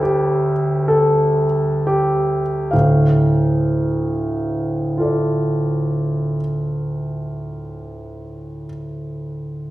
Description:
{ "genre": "classical, romantic nocturne for solo piano", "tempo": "19-28 BPM (dotted quarters)", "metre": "12/8", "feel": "rubato", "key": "D minor", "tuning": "A4 = 438 Hz", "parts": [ { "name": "clear concert grand piano", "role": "solo", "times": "0.0-9.7 s", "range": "D2 to F5", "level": "-17 LUFS", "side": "equal", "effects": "none" } ], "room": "wet recital hall reverb, RT60 1.3 s", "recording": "heard from further back in the room", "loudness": "-16 LUFS", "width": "side -16 dB against mid", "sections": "0.0-2.7 A section; 2.7-9.7 B section", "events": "slowing down 0.0-2.7", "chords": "0.0 A7/D; 2.7 Dm", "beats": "0.02 | 2.72 4.98 7.25 9.61" }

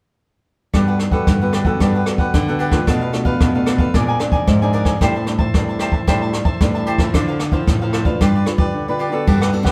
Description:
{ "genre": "samba and choro", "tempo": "112 BPM", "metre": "4/4", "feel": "straight", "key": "G major", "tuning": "A4 = 444 Hz", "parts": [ { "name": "cavaquinho", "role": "accompaniment", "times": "0.7-9.7 s", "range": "D4 to A5", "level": "-26 LUFS", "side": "equal", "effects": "none" }, { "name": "nylon-string guitar", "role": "accompaniment", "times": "0.7-9.7 s", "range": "A2 to B4", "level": "-25 LUFS", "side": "equal", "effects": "none" }, { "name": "nylon-string guitar", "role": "bass", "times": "0.7-9.7 s", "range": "G2 to D3", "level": "-22 LUFS", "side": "equal", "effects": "none" }, { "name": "jazz brush drum kit", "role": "drums", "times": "0.7-9.7 s", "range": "hi-hat, kick drum, ride cymbal, rim click", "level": "-21 LUFS", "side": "equal", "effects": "none" } ], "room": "moderate stone room reverb, RT60 1.1 s", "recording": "band playing live in one room", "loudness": "-17 LUFS", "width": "mono", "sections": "0.7-9.3 A section", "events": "break 8.7-9.3", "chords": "0.7 Gmaj9; 2.9 Bm7b5; 3.9 Bb9; 5.0 Am7; 7.1 Dm9; 8.2 Gmaj9", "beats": "| 0.74 1.27 1.81 2.34 | 2.88 3.41 3.94 4.48 | 5.01 5.55 6.08 6.61 | 7.15 7.68 8.22 8.75 | 9.28" }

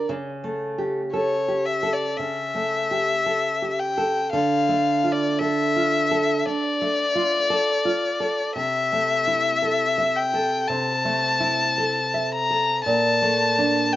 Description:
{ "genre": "romantic duo for violin and classical guitar", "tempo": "56 BPM", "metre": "4/4", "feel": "rubato", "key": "unclear", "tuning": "A4 = 438 Hz", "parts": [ { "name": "clear violin", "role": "melody", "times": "0.0-14.0 s", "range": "C#5 to Bb5", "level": "-22 LUFS", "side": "left 3 dB", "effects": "none" }, { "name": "nylon-string guitar", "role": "accompaniment", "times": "0.0-14.0 s", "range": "Bb2 to E5", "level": "-24 LUFS", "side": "right 2 dB", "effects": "none" } ], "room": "light reverb", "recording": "recorded outdoors, with no room sound, nothing above 7.5 kHz", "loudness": "-20 LUFS", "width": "side -14 dB against mid", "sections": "0.0-14.0 A section", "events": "none", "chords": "0.1 A7/C#; 4.3 Dm; 8.6 Am/C; 12.9 Bbmaj7", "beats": "| 0.08 1.14 2.19 3.27 | 4.34 5.40 6.47 7.51 | 8.57 9.64 10.70 11.78 | 12.86 13.94" }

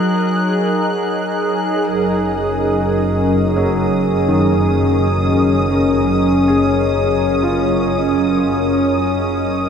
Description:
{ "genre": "ambient", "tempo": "63 BPM", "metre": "3/4", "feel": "straight", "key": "Gb major", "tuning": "A4 = 440 Hz", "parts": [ { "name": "warbly tape-like pad", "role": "sustained chords", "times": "0.0-9.7 s", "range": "Gb3 to Eb5", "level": "-15 LUFS", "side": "equal", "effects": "chorus, built-in reverb" }, { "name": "muted studio violin section", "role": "texture", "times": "0.0-9.7 s", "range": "Eb6 to Gb6", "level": "-26 LUFS", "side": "equal", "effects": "none" }, { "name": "muted chamber double bass section", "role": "bass", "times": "1.9-9.7 s", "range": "Gb1", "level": "-21 LUFS", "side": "equal", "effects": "none" }, { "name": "felt-muted upright piano", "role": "arpeggios", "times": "3.6-9.7 s", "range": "Eb3 to Bb4", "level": "-25 LUFS", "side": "equal", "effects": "tape echo" } ], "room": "wet huge ambient reverb, RT60 8.3 s", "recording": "none", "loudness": "-14 LUFS", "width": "side -7 dB against mid", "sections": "0.0-1.9 A section; 1.9-9.7 B section", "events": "fade-in on felt piano 1.9-9.7; fade-in on violin section 1.9-9.7; fade-out on double bass section 1.9-9.7", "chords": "0.0 Gb69", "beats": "0.94 | 1.89 2.85 3.80 | 4.75 5.70 6.65 | 7.61 8.56 9.51" }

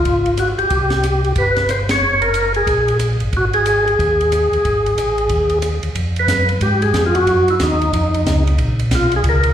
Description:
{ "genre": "soul jazz organ trio", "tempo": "183 BPM", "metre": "4/4", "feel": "swing 63% on 8ths", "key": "unclear", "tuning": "A4 = 440 Hz", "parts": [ { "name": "percussive tonewheel organ", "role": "melody", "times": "0.0-9.5 s", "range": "Eb4 to Db5", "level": "-16 LUFS", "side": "equal", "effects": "slow rotary speaker, overdrive, chorus vibrato, plate reverb, slapback echo" }, { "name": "mellow tonewheel organ", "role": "bass", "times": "0.0-9.5 s", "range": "Gb1 to Ab2", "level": "-18 LUFS", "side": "equal", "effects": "chorus vibrato, slow rotary speaker" }, { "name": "compact cocktail drum kit", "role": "drums", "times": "0.1-9.5 s", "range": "hi-hat, kick drum, ride cymbal, rim click, snare drum", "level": "-24 LUFS", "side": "equal", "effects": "slapback echo" } ], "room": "moderate club reverb, RT60 0.7 s", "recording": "live gig heard through the venue's PA, recital hall reverb", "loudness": "-14 LUFS", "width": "side -10 dB against mid", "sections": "0.0-6.0 A section; 6.0-9.5 B section", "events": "band accent 1.9", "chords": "0.0 Db (rootless); 0.7 C5; 2.0 Gbadd9; 3.3 Ab5; 6.0 Fdim; 7.3 Ebm; 7.9 Dbadd9; 8.6 Bbm", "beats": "0.06 0.38 | 0.71 1.04 1.36 1.69 | 2.02 2.35 2.67 3.00 | 3.33 3.66 3.99 4.31 | 4.64 4.97 5.30 5.63 | 5.96 6.29 6.61 6.94 | 7.27 7.60 7.93 8.26 | 8.58 8.91 9.24" }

